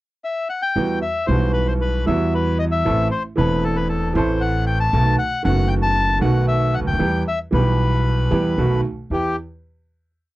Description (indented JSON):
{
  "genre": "tango",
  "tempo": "115 BPM",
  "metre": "4/4",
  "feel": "rubato",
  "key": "E harmonic minor",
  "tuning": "A4 = 440 Hz",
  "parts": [
    { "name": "bandoneon", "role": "melody", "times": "0.2-9.4 s", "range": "G4 to A5", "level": "-23 LUFS", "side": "left 3 dB", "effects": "none" },
    { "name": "clear concert grand piano", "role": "accompaniment", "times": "0.8-9.3 s", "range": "E1 to A4", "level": "-21 LUFS", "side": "right 2 dB", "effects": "none" },
    { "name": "upright bass", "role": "bass", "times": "0.8-9.3 s", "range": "E1 to E2", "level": "-21 LUFS", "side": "equal", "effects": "none" }
  ],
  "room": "little or no reverb",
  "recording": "dry, close 1970s-style studio recording",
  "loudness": "-17 LUFS",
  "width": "side -17 dB against mid",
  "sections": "0.0-0.8 pickup bar; 0.8-9.1 A section; 9.1-10.4 final chord",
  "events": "none",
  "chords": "0.0 N.C.; 0.8 Emadd9; 2.9 Am; 4.9 B7; 7.0 Em; 8.6 B7; 9.1 Em"
}